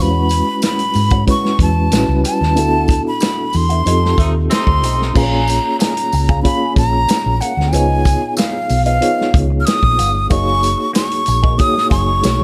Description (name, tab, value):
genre	lush 1970s-style soul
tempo	93 BPM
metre	4/4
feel	straight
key	unclear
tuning	A4 = 440 Hz
part	breathy jazz flute	melody	0.0-12.4 s	F5 to F6	-20 LUFS	equal	slapback echo
part	reed electric piano	accompaniment	0.0-12.4 s	G3 to Db5	-23 LUFS	equal	fast tremolo
part	clean electric guitar	riff	0.0-12.3 s	F3 to C5	-30 LUFS	equal	wah
part	hollow-body short-scale fingered electric bass	bass	0.0-12.4 s	Gb1 to G#2	-19 LUFS	equal	none
part	vintage drum kit	drums	0.3-12.4 s	crash cymbal, hi-hat, kick drum, snare drum	-20 LUFS	equal	none
part	tambourine	percussion	0.3-12.4 s	none	-34 LUFS	equal	none
part	warm horn section	stabs	4.2-5.1 s	C3 to Eb4	-27 LUFS	equal	none
room	small room ambience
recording	none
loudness	-15 LUFS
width	mono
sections	0.0-5.2 A section; 5.2-12.4 A section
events	band accent 2.6-5.2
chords	0.0 E69; 1.9 A13; 2.6 D69; 3.9 F7; 5.2 Bbm7; 7.7 Db9; 10.3 Gb69